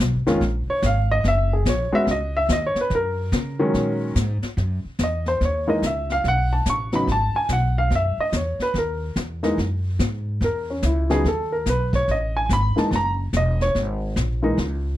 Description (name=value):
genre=jazz piano trio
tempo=144 BPM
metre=4/4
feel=swing 64% on 8ths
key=F# mixolydian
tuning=A4 = 440 Hz
part: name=upright bass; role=bass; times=0.0-15.0 s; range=E1 to C#3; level=-23 LUFS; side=equal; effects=none
part: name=jazz brush drum kit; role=drums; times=0.0-15.0 s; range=brushed snare drum, hi-hat, kick drum, snare drum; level=-27 LUFS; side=left 2 dB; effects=none
part: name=dark baby grand piano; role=melody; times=0.3-14.6 s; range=C#3 to C#6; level=-22 LUFS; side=equal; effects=slapback echo
room=little or no reverb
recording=dry, close 1970s-style studio recording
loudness=-20 LUFS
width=side -14 dB against mid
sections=0.0-4.6 A section; 4.6-15.0 A section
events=grand piano solo 0.0-15.0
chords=0.0 C#69; 1.2 F#69; 4.6 F#7(no3); 6.2 B7sus2; 7.9 F#13; 11.2 B6; 12.9 F#9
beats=0.00 0.41 0.83 | 1.25 1.66 2.08 2.49 | 2.91 3.33 3.74 4.16 | 4.57 4.99 5.41 5.82 | 6.24 6.66 7.08 7.49 | 7.91 8.33 8.74 9.16 | 9.58 9.99 10.41 10.83 | 11.24 11.66 12.08 12.49 | 12.91 13.33 13.74 14.16 | 14.58